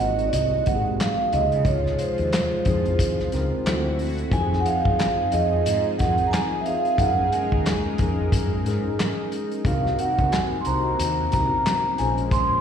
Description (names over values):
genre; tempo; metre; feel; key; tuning
R&B, neo-soul; 90 BPM; 4/4; swing 58% on 16ths; unclear; A4 = 440 Hz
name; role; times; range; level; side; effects
vibraphone with medium mallets; melody; 0.0-12.6 s; C5 to C6; -24 LUFS; right 2 dB; slapback echo, tape echo
mellow tine electric piano; accompaniment; 0.0-12.6 s; C3 to C5; -29 LUFS; equal; medium stereo tremolo, slapback echo
lush unison pad; sustained chords; 0.0-12.6 s; C3 to Bb4; -32 LUFS; equal; chorus
dark trombone section; stabs; 0.0-12.6 s; C3 to Ab4; -36 LUFS; left 5 dB; none
woody fretless electric bass; bass; 0.0-12.6 s; Ab1 to Db3; -25 LUFS; left 1 dB; none
warm soul drum kit; drums; 0.2-12.5 s; handclaps, hi-hat, kick drum, snare drum; -25 LUFS; left 1 dB; none
room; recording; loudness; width
light reverb; live gig heard through the venue's PA, recital hall reverb; -20 LUFS; side -8 dB against mid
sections
0.0-12.6 A section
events
none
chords
0.0 Ab9; 1.3 Dbmaj7; 3.7 D9; 4.3 Fm7; 7.0 Gb69; 9.7 Cm7b5; 12.0 Bbm9